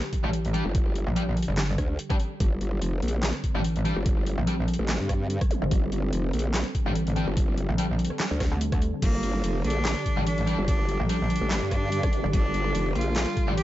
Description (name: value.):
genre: heavy wobble dubstep.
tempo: 145 BPM.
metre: 4/4.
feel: swing 55% on 16ths, half-time.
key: G minor.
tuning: A4 = 436 Hz.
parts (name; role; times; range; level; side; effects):
supersaw pad; sustained chords; 0.0-13.6 s; D3 to A4; -33 LUFS; right 1 dB; sidechain pumping, low-pass filter.
dubstep drum kit; drums; 0.0-13.6 s; crash cymbal, handclaps, hi-hat, ride cymbal, rim click, snare drum; -33 LUFS; equal; overdrive.
electronic kick drum; drums; 0.1-13.5 s; none; -25 LUFS; equal; overdrive.
fuzz guitar; stabs; 0.2-13.5 s; G3 to G4; -34 LUFS; left 2 dB; distortion, tape echo.
metallic wobble bass; bass; 0.2-13.6 s; G1 to D2; -26 LUFS; equal; distortion, chorus, overdrive.
growl bass; bass; 0.7-13.3 s; F1 to G2; -27 LUFS; equal; chorus, overdrive.
zap; sound effects; 5.5-5.6, 12.0-12.1 s; none; -36 LUFS; equal; none.
clear cello; melody; 9.0-13.6 s; Bb3 to G4; -30 LUFS; equal; tape echo.
room: digital ambience.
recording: dark, warm production, nothing above 7.8 kHz.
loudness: -23 LUFS.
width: side -14 dB against mid.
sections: 0.0-13.6 A section.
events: none.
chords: 0.0 Gmadd9.